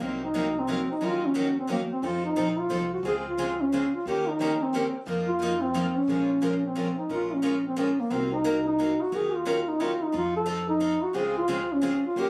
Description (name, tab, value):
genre	acoustic string swing (jazz manouche)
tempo	178 BPM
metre	3/4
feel	swing 59% on 8ths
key	Bb minor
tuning	A4 = 440 Hz
part	dark duduk	melody	0.0-12.3 s	Bb3 to A4	-28 LUFS	equal	none
part	picked steel-string acoustic guitar	accompaniment	0.0-12.3 s	C3 to Bb4	-35 LUFS	equal	none
part	picked steel-string acoustic guitar	accompaniment	0.0-6.9, 11.1-12.3 s	C3 to Bb4	-36 LUFS	equal	none
part	upright bass	bass	0.0-12.3 s	Bb1 to F2	-42 LUFS	equal	none
room	light reverb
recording	recorded on a phone in the room, club reverb, compression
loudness	-27 LUFS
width	mono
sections	0.0-7.1 A section; 7.1-12.3 A section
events	none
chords	0.0 Cm7b5; 1.0 Ebm7; 2.0 F7; 3.0 Dbmaj7; 4.1 Eb7; 5.1 F7sus4; 6.1 Bbm7; 8.1 Cm7b5; 9.1 Ebm7; 10.1 F7; 11.2 Dbmaj7